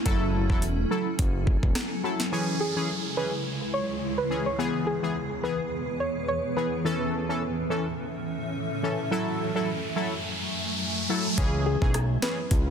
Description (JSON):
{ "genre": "dancehall", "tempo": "106 BPM", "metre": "4/4", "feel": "swing 56% on 16ths", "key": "F# minor", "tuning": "A4 = 440 Hz", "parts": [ { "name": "granular cloud pad", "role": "sustained chords", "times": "0.0-12.7 s", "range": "C#2 to G#5", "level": "-31 LUFS", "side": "right 1 dB", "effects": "built-in reverb, sidechain pumping" }, { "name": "synth brass stab", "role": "accompaniment", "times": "0.1-12.4 s", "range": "E3 to A4", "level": "-30 LUFS", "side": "left 1 dB", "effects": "chorus" }, { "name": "fat analog bass", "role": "bass", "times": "0.1-1.7, 11.4-12.7 s", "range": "E1 to C#2", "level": "-27 LUFS", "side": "equal", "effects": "none" }, { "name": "island pop drum kit", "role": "drums", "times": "0.1-2.3, 11.4-12.7 s", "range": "hi-hat, kick drum, rim click, snare drum", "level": "-26 LUFS", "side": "equal", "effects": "overdrive, soft clipping on snare" }, { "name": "downlifter and riser", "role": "sound effects", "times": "2.3-11.4 s", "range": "none", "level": "-35 LUFS", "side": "right 1 dB", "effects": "none" }, { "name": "soft round pluck", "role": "melody", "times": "2.6-6.7, 11.7-12.3 s", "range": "G#4 to C#5", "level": "-31 LUFS", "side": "equal", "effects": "chorus, digital delay" } ], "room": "light reverb", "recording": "dense, heavily limited modern master", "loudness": "-25 LUFS", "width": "side -7 dB against mid", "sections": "0.0-2.3 A section; 2.3-11.4 B section; 11.4-12.7 A section", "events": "riser 8.6-11.4", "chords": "0.1 F#m7; 2.3 C#m; 4.6 E; 6.8 A; 9.1 F#m7; 11.4 C#m" }